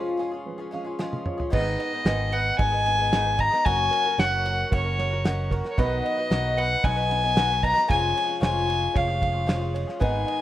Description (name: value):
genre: indie folk with a building arrangement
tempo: 113 BPM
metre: 4/4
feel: straight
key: unclear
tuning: A4 = 440 Hz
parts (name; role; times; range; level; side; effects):
- felt-muted upright piano; accompaniment; 0.0-10.4 s; E#1 to F#5; -37 LUFS; right 4 dB; none
- picked twelve-string acoustic guitar; accompaniment; 0.0-10.4 s; G#2 to B4; -31 LUFS; left 3 dB; none
- dark upright piano; arpeggios; 0.0-10.4 s; A#4 to G#5; -35 LUFS; right 8 dB; none
- cloth-damped thuddy drum kit; drums; 1.0-10.4 s; crash cymbal, kick drum, ride cymbal, snare drum, toms; -26 LUFS; equal; none
- warm fiddle; melody; 1.5-10.4 s; C#5 to A#5; -24 LUFS; left 2 dB; slapback echo
- picked electric bass; bass; 1.5-10.2 s; E#1 to B1; -28 LUFS; equal; none
room: little or no reverb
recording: rough home demo mix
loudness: -21 LUFS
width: side -13 dB against mid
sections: 0.0-1.5 A section; 1.5-10.4 B section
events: break 0.0-1.5; build-up 0.0-1.5; drum fill 1.0-1.5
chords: 0.0 C#/E#; 1.5 G#m; 3.7 F#; 5.8 B; 7.9 C#/E#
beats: 0.47 1.00 | 1.54 2.07 2.60 3.13 | 3.66 4.19 4.72 5.25 | 5.78 6.31 6.84 7.37 | 7.89 8.42 8.95 9.48 | 10.01